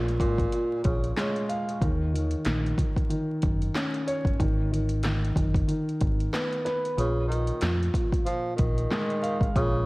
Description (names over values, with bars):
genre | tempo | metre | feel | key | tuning
hip hop, boom-bap hip-hop | 93 BPM | 4/4 | swing 56% on 16ths | Bb phrygian | A4 = 441 Hz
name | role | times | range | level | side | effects
breathy tenor saxophone | melody | 0.0-1.5, 7.0-9.9 s | Bb2 to F3 | -32 LUFS | equal | tape echo
dark grand piano | accompaniment | 0.0-9.9 s | Bb2 to F5 | -29 LUFS | equal | cassette tape
deep dub fingered electric bass | bass | 0.0-9.9 s | Gb1 to F2 | -28 LUFS | equal | transformer saturation
deep house drum kit | drums | 0.1-9.7 s | handclaps, hi-hat, kick drum, snare drum | -28 LUFS | equal | none
room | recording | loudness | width
digital ambience | worn, warbling old tape, cassette tape, vinyl crackle, warbly pitch drift | -24 LUFS | side -23 dB against mid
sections
0.0-9.9 A section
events
kick muted 7.0-7.6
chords
0.0 Bb5; 1.8 Eb7(no3); 4.4 Abm; 7.0 Bb5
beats
0.52 1.17 | 1.81 2.46 3.10 3.75 | 4.39 5.04 5.69 6.33 | 6.98 7.62 8.27 8.91 | 9.56